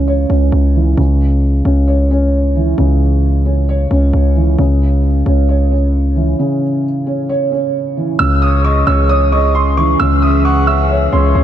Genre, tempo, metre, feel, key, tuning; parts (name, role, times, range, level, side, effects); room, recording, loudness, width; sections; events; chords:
hip hop; 133 BPM; 4/4; half-time; C# minor; A4 = 440 Hz
felt-muted upright piano; accompaniment; 0.0-11.4 s; C#3 to C#5; -16 LUFS; right 2 dB; lush chorus
distorted 808-style bass; bass; 0.0-11.4 s; C#2; -13 LUFS; left 1 dB; distortion
dark concert grand piano; melody; 8.2-11.4 s; B#5 to E6; -16 LUFS; right 1 dB; tape echo
warbly tape-like pad; sustained chords; 8.6-11.4 s; E3 to G#4; -22 LUFS; equal; chorus, built-in reverb
breathy flute-like synth lead; second line; 8.4-11.4 s; C#5 to F#5; -20 LUFS; left 2 dB; chorus, phaser, tape echo
light reverb; -11 LUFS; side -11 dB against mid
0.0-8.2 A section; 8.2-11.4 B section
break 6.4-8.2
0.0 C#m